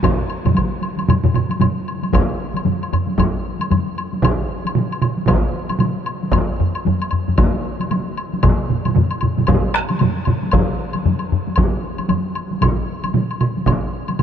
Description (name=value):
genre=japanese traditional, taiko drum ensemble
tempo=114 BPM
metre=4/4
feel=swing 60% on 16ths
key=none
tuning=none
part: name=solo taiko drums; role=percussion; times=0.0-14.2 s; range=none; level=-22 LUFS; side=right 4 dB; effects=none
part: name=taiko ensemble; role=percussion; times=0.0-14.2 s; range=none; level=-22 LUFS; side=equal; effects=none
part: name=taiko ensemble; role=percussion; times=0.0-12.2 s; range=none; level=-21 LUFS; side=left 2 dB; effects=none
part: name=taiko ensemble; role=percussion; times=0.0-13.8 s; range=none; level=-22 LUFS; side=equal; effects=none
part: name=woodblock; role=percussion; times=0.0-14.2 s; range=none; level=-28 LUFS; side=left 3 dB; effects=none
room=moderate huge ambient reverb, RT60 6.7 s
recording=dark, warm production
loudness=-16 LUFS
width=side -8 dB against mid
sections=0.0-2.1 A section; 2.1-14.2 B section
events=none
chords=none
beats=| 0.03 0.56 1.09 1.61 | 2.14 2.66 3.19 3.71 | 4.24 4.76 5.29 5.81 | 6.34 6.86 7.38 7.91 | 8.43 8.96 9.48 10.01 | 10.53 11.05 11.58 12.10 | 12.62 13.14 13.67 14.19